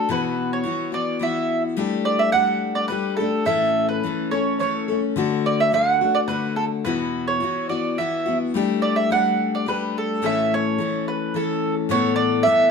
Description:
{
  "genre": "rock",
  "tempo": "107 BPM",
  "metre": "3/4",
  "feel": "straight",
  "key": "A mixolydian",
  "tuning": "A4 = 440 Hz",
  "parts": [
    { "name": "mandolin", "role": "melody", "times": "0.0-12.7 s", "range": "A4 to F#5", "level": "-21 LUFS", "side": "right 4 dB", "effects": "none" },
    { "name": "picked steel-string acoustic guitar", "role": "accompaniment", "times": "0.0-12.7 s", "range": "E2 to A4", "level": "-23 LUFS", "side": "left 5 dB", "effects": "none" }
  ],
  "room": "moderate studio reverb, RT60 0.8 s",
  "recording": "band playing live in one room",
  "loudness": "-19 LUFS",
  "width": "side -5 dB against mid",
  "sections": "0.0-11.9 A section",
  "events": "none",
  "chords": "0.1 Esus2; 1.8 Gsus2; 3.5 A; 5.2 D; 6.9 Esus2; 8.5 Gsus2; 10.2 A; 11.9 Asus2"
}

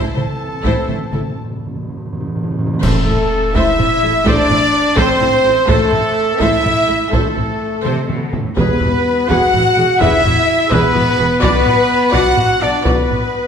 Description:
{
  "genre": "cinematic, epic orchestral film score",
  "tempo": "83 BPM (dotted quarters)",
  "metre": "6/8",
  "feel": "straight",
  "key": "A dorian",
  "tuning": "A4 = 440 Hz",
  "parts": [
    { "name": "warm symphonic violin section", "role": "melody", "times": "0.0-13.5 s", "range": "A4 to A5", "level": "-25 LUFS", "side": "left 2 dB", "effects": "none" },
    { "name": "rich symphonic violin section", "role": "second line", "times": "0.0-13.5 s", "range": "A4 to F#5", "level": "-21 LUFS", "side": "left 1 dB", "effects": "none" },
    { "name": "warm symphonic viola section", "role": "accompaniment", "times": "0.0-13.2 s", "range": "B3 to D5", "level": "-23 LUFS", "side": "right 1 dB", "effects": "none" },
    { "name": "warm French horn section", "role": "sustained chords", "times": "0.0-13.5 s", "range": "E3 to F#4", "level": "-19 LUFS", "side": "left 2 dB", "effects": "none" },
    { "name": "warm trumpet", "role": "stabs", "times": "0.0-13.5 s", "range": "A4 to F#5", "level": "-19 LUFS", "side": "right 1 dB", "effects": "none" },
    { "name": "timpani", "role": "percussion", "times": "0.0-3.5, 8.6-9.3 s", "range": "E2 to A2", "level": "-22 LUFS", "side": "equal", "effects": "none" },
    { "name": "rich symphonic cello section", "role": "bass", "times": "0.2-13.2 s", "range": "E2 to C3", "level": "-23 LUFS", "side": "right 2 dB", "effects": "none" },
    { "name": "warm symphonic double bass section", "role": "bass", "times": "0.2-13.2 s", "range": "E1 to B1", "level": "-24 LUFS", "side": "right 3 dB", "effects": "none" },
    { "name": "taiko ensemble", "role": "drums", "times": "0.2-13.3 s", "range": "none", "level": "-20 LUFS", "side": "equal", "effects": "none" },
    { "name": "clash cymbals and concert bass drum", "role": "percussion", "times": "2.8-3.8 s", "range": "none", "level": "-23 LUFS", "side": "equal", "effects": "none" },
    { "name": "small flute group", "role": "second line", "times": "2.9-13.5 s", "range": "A4 to F#5", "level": "-22 LUFS", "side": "left 2 dB", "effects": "none" }
  ],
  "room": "wet scoring stage reverb, RT60 1.6 s",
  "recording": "none",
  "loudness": "-12 LUFS",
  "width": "side -7 dB against mid",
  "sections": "0.0-2.8 A section; 2.8-13.5 B section",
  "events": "build-up 0.0-2.8; timpani fill 0.0-2.8; break 1.4-2.8; band accent 2.8-3.3; drum fill 7.8-8.6",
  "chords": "0.0 Am; 8.6 Eadd9; 11.4 Bm"
}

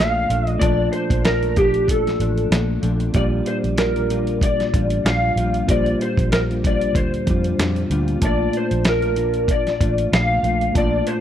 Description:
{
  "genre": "indie pop, bedroom pop",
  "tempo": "95 BPM",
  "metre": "4/4",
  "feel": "swing 55% on 16ths",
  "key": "Bb major",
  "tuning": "A4 = 440 Hz",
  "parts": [
    { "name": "electric slide guitar", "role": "melody", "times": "0.0-11.2 s", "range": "G4 to F5", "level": "-22 LUFS", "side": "equal", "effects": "ensemble chorus, slapback echo" },
    { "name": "mellow electric guitar", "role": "accompaniment", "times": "0.0-11.2 s", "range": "Bb2 to F4", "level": "-25 LUFS", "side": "left 4 dB", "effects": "ensemble chorus, warbly pitch drift" },
    { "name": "mellow tine electric piano", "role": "accompaniment", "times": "0.0-11.2 s", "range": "Bb3 to A5", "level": "-28 LUFS", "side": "right 3 dB", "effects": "cassette tape" },
    { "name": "vintage muted fingered electric bass", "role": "bass", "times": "0.0-11.0 s", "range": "A1 to F2", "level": "-23 LUFS", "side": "equal", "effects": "none" },
    { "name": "dusty soul sampler-style drum kit", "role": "drums", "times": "0.3-11.2 s", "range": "hi-hat, kick drum, snare drum", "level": "-21 LUFS", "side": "equal", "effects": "none" }
  ],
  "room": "digital ambience",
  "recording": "dry, close 1970s-style studio recording",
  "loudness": "-17 LUFS",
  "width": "side -10 dB against mid",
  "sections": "0.0-11.2 A section",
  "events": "none",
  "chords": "0.0 Bbmaj7; 3.2 Gm7; 8.2 Bbmaj7"
}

